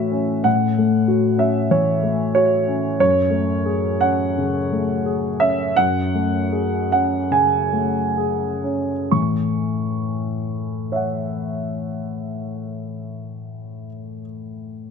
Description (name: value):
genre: neoclassical minimalist piano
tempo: 64-96 BPM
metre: 4/4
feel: rubato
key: A major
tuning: A4 = 440 Hz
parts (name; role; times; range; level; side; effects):
- warm baby grand piano; solo; 0.0-14.9 s; F#2 to C#6; -18 LUFS; equal; slapback echo
room: light reverb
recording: nothing above 10.6 kHz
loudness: -18 LUFS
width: side -6 dB against mid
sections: 0.0-9.1 A section; 9.1-12.8 B section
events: slowing down 1.7-9.1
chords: 0.0 A6; 3.0 F#madd9; 9.1 A6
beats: | 0.46 1.10 1.72 2.36 | 3.00 3.67 4.36 5.05 | 5.78 6.53 7.32 8.18 | 9.10 10.01 10.92 11.84